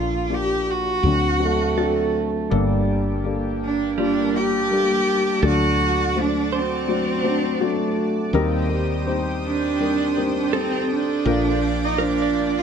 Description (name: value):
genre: acoustic folk-pop ballad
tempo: 82 BPM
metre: 4/4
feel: straight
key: G minor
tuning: A4 = 438 Hz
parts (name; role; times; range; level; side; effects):
- rich cello; melody; 0.0-12.6 s; C4 to G4; -22 LUFS; right 2 dB; none
- felt-muted upright piano; accompaniment; 0.0-12.6 s; G1 to C5; -24 LUFS; left 5 dB; none
- woody fretless electric bass; bass; 0.0-12.6 s; G1 to Eb2; -26 LUFS; right 1 dB; none
- mellow French horn; second line; 1.4-9.3 s; G3 to D4; -26 LUFS; right 7 dB; none
- direct-recorded clean electric guitar; arpeggios; 1.8-12.6 s; G3 to D5; -28 LUFS; right 8 dB; tremolo
- lush unison pad; sustained chords; 2.5-12.6 s; Bb3 to Eb6; -30 LUFS; equal; chorus
room: light reverb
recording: close, detailed microphones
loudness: -19 LUFS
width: side -7 dB against mid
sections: 0.0-12.6 A section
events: none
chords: 0.0 Bbmaj7; 1.0 D7; 2.5 Gmadd9; 5.4 D; 8.3 Cm7/Eb; 11.3 Bb